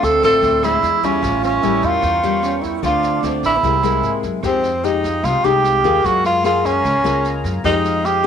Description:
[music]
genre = bossa nova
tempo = 150 BPM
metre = 4/4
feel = straight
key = D minor, F minor from 4.4 s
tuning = A4 = 440 Hz
[part]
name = breathy tenor saxophone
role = melody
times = 0.0-8.3 s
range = C4 to A4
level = -16 LUFS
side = right 2 dB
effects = slapback echo
[part]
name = breathy bright wooden-headed alto flute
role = second line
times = 0.0-4.2 s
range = B3 to F4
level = -24 LUFS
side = right 14 dB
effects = none
[part]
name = nylon-string guitar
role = accompaniment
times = 0.0-8.3 s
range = A2 to Ab4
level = -22 LUFS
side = left 12 dB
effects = none
[part]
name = sweeping resonant pad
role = sustained chords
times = 0.0-8.3 s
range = Ab3 to Eb6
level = -30 LUFS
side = equal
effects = chorus
[part]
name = upright bass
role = bass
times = 0.0-8.3 s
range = A1 to G#2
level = -25 LUFS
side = equal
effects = none
[part]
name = jazz brush drum kit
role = drums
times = 0.0-8.3 s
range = kick drum, rim click, snare drum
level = -31 LUFS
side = right 4 dB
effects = none
[sound]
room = light reverb, small room ambience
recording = 1960s-style stereo with parts hard left and right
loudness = -14 LUFS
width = side -8 dB against mid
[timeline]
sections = 0.0-4.4 A section; 4.4-8.3 B section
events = none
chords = 0.0 Dm7; 0.8 E7b9; 1.2 A7b9b13; 2.8 Dm7; 3.6 Caug7; 4.4 Fm9; 6.0 Gbmaj9; 7.6 Fm9

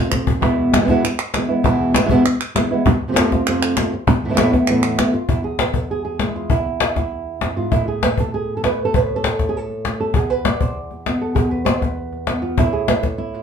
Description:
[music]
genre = flamenco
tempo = 197 BPM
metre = 4/4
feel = straight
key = unclear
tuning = A4 = 441 Hz
[part]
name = flamenco guitar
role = melody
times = 0.0-13.4 s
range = E2 to D5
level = -19 LUFS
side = right 2 dB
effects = none
[part]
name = cajon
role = percussion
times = 0.1-13.2 s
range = none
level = -20 LUFS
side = left 3 dB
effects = none
[part]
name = palmas hand claps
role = percussion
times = 0.1-5.1 s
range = none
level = -24 LUFS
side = right 4 dB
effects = none
[sound]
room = wet studio reverb, RT60 0.6 s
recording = heard from further back in the room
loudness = -16 LUFS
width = side -7 dB against mid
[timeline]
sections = 0.0-5.3 A section; 5.3-13.4 B section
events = drum fill 0.0-0.4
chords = 0.4 E; 2.9 F; 4.1 Esus4; 5.3 E; 7.7 A5; 10.2 E5; 12.6 A5

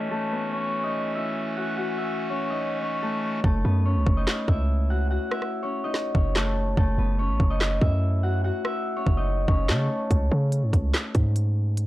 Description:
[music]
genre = hip hop, drill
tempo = 144 BPM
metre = 4/4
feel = half-time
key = unclear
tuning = A4 = 439 Hz
[part]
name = Celtic harp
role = melody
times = 0.0-11.9 s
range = A3 to F#5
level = -28 LUFS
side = left 1 dB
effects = low-pass filter
[part]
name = pipe organ, clarinet reed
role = sustained chords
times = 0.0-3.4 s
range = E3 to F#4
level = -31 LUFS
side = equal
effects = low-pass filter
[part]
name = hard-hitting 808-style bass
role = bass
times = 3.4-11.8 s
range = F#1 to C#3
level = -23 LUFS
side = equal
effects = none
[part]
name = drill drum kit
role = drums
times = 3.4-11.9 s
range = handclaps, hi-hat, kick drum, rim click, snare drum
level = -23 LUFS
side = equal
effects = none
[sound]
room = small room ambience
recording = dry, gritty hardware recording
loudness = -22 LUFS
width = side -16 dB against mid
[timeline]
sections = 0.0-3.4 A section; 3.4-11.9 B section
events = hi-hats muted 3.4-10.1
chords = 0.0 F#m7; 10.1 C#5

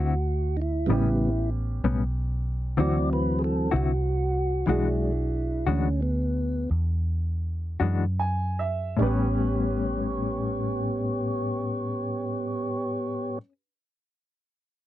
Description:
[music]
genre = slow blues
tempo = 48-64 BPM (dotted quarters)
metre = 12/8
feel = straight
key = A mixolydian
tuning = A4 = 441 Hz
[part]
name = dark upright piano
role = accompaniment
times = 0.0-13.4 s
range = B3 to G#5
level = -34 LUFS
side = right 5 dB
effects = none
[part]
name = mellow electric guitar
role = accompaniment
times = 0.0-13.5 s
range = A2 to F#4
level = -28 LUFS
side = left 4 dB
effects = tremolo
[part]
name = mellow tonewheel organ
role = sustained chords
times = 0.0-13.4 s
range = C#3 to D5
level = -28 LUFS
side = right 1 dB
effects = slow rotary speaker
[part]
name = vintage muted fingered electric bass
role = bass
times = 0.0-13.4 s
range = A1 to F#2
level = -27 LUFS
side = equal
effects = none
[sound]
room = little or no reverb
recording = dry, close 1970s-style studio recording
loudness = -24 LUFS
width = side -13 dB against mid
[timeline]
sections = 0.0-9.0 A section; 9.0-14.0 B section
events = tonewheel organ solo 0.0-9.0; slowing down 3.4-9.0; upright piano fill 7.8-9.0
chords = 0.0 D9; 0.9 A9; 2.8 D9; 4.7 E9; 9.0 A9

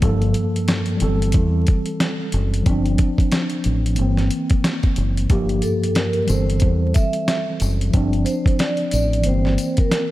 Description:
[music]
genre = hip hop, boom-bap hip-hop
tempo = 91 BPM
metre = 4/4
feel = swing 59% on 16ths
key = G dorian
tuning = A4 = 440 Hz
[part]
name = mellow tine electric piano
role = accompaniment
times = 0.0-10.1 s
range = G2 to A4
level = -22 LUFS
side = equal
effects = medium stereo tremolo, cassette tape
[part]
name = deep dub fingered electric bass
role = bass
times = 0.0-9.6 s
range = F#1 to E2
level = -20 LUFS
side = equal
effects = none
[part]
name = dusty soul sampler-style drum kit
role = drums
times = 0.0-10.1 s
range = hi-hat, kick drum, snare drum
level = -20 LUFS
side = equal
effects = none
[part]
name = vibraphone with soft mallets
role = melody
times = 5.6-10.1 s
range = A4 to E5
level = -25 LUFS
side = right 1 dB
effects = tape echo
[part]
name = tambourine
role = percussion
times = 5.6-9.8 s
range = none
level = -37 LUFS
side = left 5 dB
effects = none
[sound]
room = light reverb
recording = vinyl crackle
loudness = -17 LUFS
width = side -16 dB against mid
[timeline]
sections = 0.0-10.1 A section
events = none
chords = 0.0 Gm9; 1.0 Am7/G; 2.7 Dm7/G; 4.0 C7/G; 5.3 Gm7; 6.3 Am7/G; 7.9 Dm7/G; 9.3 C7/G

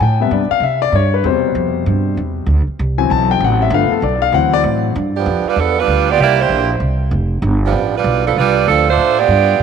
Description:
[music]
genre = jazz, big band swing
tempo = 194 BPM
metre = 4/4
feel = swing 62% on 8ths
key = G major from 5.0 s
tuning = A4 = 440 Hz
[part]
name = clear grand piano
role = accompaniment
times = 0.0-4.9 s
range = B2 to A5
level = -16 LUFS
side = left 8 dB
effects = none
[part]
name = upright bass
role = bass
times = 0.0-9.6 s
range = F1 to C3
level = -17 LUFS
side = right 1 dB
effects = none
[part]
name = bright saxophone section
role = melody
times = 5.2-9.6 s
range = F3 to D5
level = -13 LUFS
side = right 9 dB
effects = none
[sound]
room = moderate plate reverb, RT60 2.3 s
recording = 1960s-style stereo with parts hard left and right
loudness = -12 LUFS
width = side -6 dB against mid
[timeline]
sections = 0.0-5.0 A section; 5.0-9.6 B section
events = grand piano solo 0.0-5.0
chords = 0.0 Am7 (rootless); 2.5 D7; 3.7 G7; 4.3 D7; 5.0 G7; 6.2 C7; 7.4 G7; 8.7 Dm7

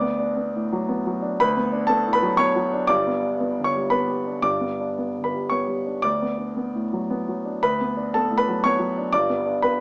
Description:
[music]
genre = neoclassical minimalist piano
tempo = 117 BPM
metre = 3/4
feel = rubato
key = D major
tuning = A4 = 440 Hz
[part]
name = warm concert grand piano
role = solo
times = 0.0-9.8 s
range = G1 to D6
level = -20 LUFS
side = equal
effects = none
[sound]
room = light reverb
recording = small speaker sound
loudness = -20 LUFS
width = side -33 dB against mid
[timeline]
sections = 0.0-9.8 A section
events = none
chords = 0.0 D6; 2.9 G; 6.0 D6; 9.1 G

